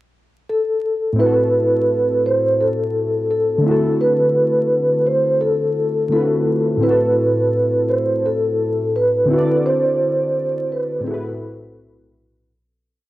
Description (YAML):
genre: hip hop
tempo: 85 BPM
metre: 4/4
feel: swing 61% on 16ths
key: A dorian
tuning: A4 = 441 Hz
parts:
  - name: vibraphone with soft mallets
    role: melody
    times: 0.5-12.1 s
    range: G#4 to C5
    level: -17 LUFS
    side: equal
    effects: cassette tape
  - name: warbly lo-fi synth keys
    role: accompaniment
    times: 1.1-12.5 s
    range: A2 to D5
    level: -21 LUFS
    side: equal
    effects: chorus
room: light reverb, small room ambience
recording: home recording on cassette, vinyl crackle, faint mains hum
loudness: -15 LUFS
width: side -16 dB against mid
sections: 0.0-1.2 pickup bar; 1.2-12.5 A section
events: fade-out 9.6-12.5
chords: 0.0 N.C.; 1.2 Am69; 3.6 D13; 6.8 Am69; 9.3 D9; 11.1 Am69